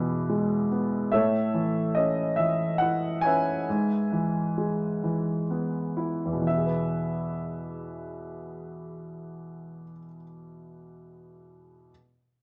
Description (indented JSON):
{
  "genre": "folk",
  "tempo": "61-72 BPM",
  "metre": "3/4",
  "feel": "straight",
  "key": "E major",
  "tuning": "A4 = 440 Hz",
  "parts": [
    { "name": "warm upright piano", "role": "melody", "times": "0.0-11.9 s", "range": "E2 to G#5", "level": "-28 LUFS", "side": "equal", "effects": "none" }
  ],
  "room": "wet small room reverb, RT60 0.6 s",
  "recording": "none",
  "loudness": "-27 LUFS",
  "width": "mono",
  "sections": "0.0-6.5 A section; 6.5-9.4 B section",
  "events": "slowing down 1.1-6.5",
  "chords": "0.0 E; 1.1 A; 3.7 E/G#; 6.5 E",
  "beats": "0.29 | 1.12 1.95 2.80 | 3.67 4.56 5.49 | 6.45 7.43 8.41"
}